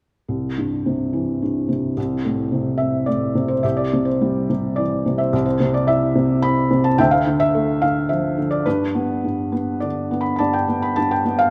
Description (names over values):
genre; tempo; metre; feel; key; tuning
classical, lyrical solo piano; 107 BPM; 3/4; rubato; C major; A4 = 440 Hz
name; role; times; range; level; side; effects
felt-muted upright piano; solo; 0.3-11.5 s; C2 to B5; -20 LUFS; equal; none
room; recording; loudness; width
moderate scoring stage reverb, RT60 1.6 s; none; -20 LUFS; mono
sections
0.3-3.6 A section; 3.6-11.5 B section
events
none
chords
0.3 C; 2.0 Am/C; 3.6 C; 5.3 Cmaj9; 7.0 Dmadd9; 8.7 G